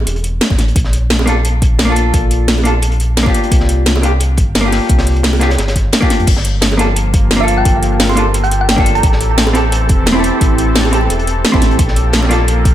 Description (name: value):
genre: liquid drum and bass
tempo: 174 BPM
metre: 4/4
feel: swing 54% on 16ths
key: G dorian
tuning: A4 = 440 Hz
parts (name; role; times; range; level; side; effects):
- sub bass with octave; bass; 0.0-12.7 s; E1 to F2; -15 LUFS; equal; none
- bongos; percussion; 0.0-12.3 s; none; -23 LUFS; right 4 dB; none
- crunchy breakbeat drum kit; drums; 0.1-12.7 s; hi-hat, snare drum; -24 LUFS; equal; high-pass filter on hats, high-pass filter on snare, high-pass filter on room
- drum and bass drum kit; drums; 0.1-12.7 s; crash cymbal, hi-hat, snare drum; -17 LUFS; equal; none
- electronic kick drum; drums; 0.5-12.7 s; none; -14 LUFS; equal; none
- vintage hollow-body jazz guitar; accompaniment; 1.3-12.4 s; Bb3 to A4; -17 LUFS; equal; ping-pong delay
- lush unison pad; sustained chords; 6.3-12.7 s; E3 to A4; -20 LUFS; left 1 dB; chorus, sidechain pumping
- thumb-piano-like synth pluck; melody; 7.4-9.1 s; F5 to C6; -18 LUFS; right 2 dB; chorus, phaser, digital delay
room: light reverb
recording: none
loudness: -10 LUFS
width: side -12 dB against mid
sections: 0.0-12.7 A section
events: none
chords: 0.0 A5; 0.8 Gm9/Bb (rootless); 3.3 C7sus4; 6.3 Gm9; 9.0 Am7; 11.8 Gm9/Bb